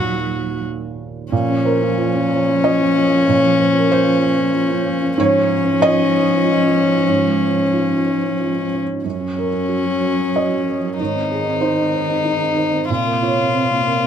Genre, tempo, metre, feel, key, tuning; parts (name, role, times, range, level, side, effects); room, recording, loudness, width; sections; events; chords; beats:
neoclassical piano and strings; 93 BPM; 3/4; rubato; Bb minor; A4 = 437 Hz
warm violin; melody; 0.0-14.1 s; Db4 to Gb4; -18 LUFS; left 5 dB
dark cello; second line; 0.0-14.1 s; C3 to Gb3; -24 LUFS; right 6 dB
felt-muted upright piano; accompaniment; 0.0-14.1 s; Eb2 to Eb5; -19 LUFS; right 4 dB
light reverb; close, detailed microphones; -15 LUFS; side -8 dB against mid
0.0-1.3 A section; 1.3-14.1 B section
0.0 Ebm; 1.3 Bbmadd9; 5.2 Db/Ab; 9.0 Gb; 11.0 Ab; 12.9 Bbmadd9
0.64 | 1.32 1.97 2.63 | 3.27 3.91 4.54 | 5.17 5.81 6.44 | 7.08 7.73 8.39 | 9.04 9.69 10.35 | 10.99 11.62 12.25 | 12.89 13.53